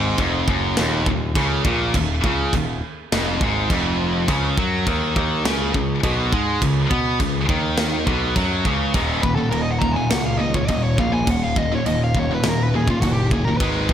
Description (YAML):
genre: heavy metal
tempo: 103 BPM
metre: 4/4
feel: straight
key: Eb minor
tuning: A4 = 439 Hz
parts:
  - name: heavy high-gain guitar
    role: riff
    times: 0.0-13.9 s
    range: Eb2 to Cb4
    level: -21 LUFS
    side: equal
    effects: distortion
  - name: overdriven picked electric bass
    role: bass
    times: 0.0-13.9 s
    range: Eb1 to Cb3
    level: -24 LUFS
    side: equal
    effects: none
  - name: tight metal drum kit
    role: drums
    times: 0.2-13.9 s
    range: china cymbal, crash cymbal, kick drum, snare drum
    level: -24 LUFS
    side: equal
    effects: none
  - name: dark smooth lead guitar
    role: melody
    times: 9.2-13.9 s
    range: F4 to Bb5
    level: -24 LUFS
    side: equal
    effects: overdrive, slapback echo
room: light reverb, studio reverb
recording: none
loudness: -18 LUFS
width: side -9 dB against mid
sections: 0.0-9.0 A section; 9.0-13.9 B section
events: lead electric guitar solo 9.0-13.9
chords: 0.0 Ebm; 4.3 Db5; 9.0 Eb5